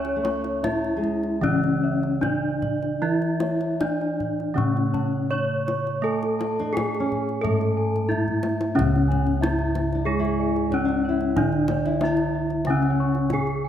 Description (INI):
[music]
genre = Javanese gamelan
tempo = 75-92 BPM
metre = 4/4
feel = straight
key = C# pelog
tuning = A4 = 440 Hz
[part]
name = gamelan-type bronze metallophone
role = melody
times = 0.0-13.7 s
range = C#4 to C#5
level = -25 LUFS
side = left 2 dB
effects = none
[part]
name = nylon-string guitar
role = second line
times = 0.0-13.7 s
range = G#3 to E4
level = -30 LUFS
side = left 3 dB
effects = none
[part]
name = gamelan-type bronze metallophone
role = accompaniment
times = 0.0-13.7 s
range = C#3 to C#4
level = -28 LUFS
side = right 5 dB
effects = none
[part]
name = gamelan-type bossed gongs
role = arpeggios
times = 0.0-13.7 s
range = C#5 to C#6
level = -34 LUFS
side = left 4 dB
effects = none
[part]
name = gamelan-type bronze metallophone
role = arpeggios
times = 0.0-13.7 s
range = C#5 to C#6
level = -34 LUFS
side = right 2 dB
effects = none
[part]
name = gamelan-type bossed gongs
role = bass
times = 0.0-13.7 s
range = C#2 to C#5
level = -28 LUFS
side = equal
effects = none
[part]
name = kendang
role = percussion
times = 0.0-13.6 s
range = none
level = -32 LUFS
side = left 2 dB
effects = none
[sound]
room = moderate concert hall reverb, RT60 2.0 s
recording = none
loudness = -21 LUFS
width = side -10 dB against mid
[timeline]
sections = 0.0-8.8 A section; 8.8-13.7 B section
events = drum fill 8.1-8.8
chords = none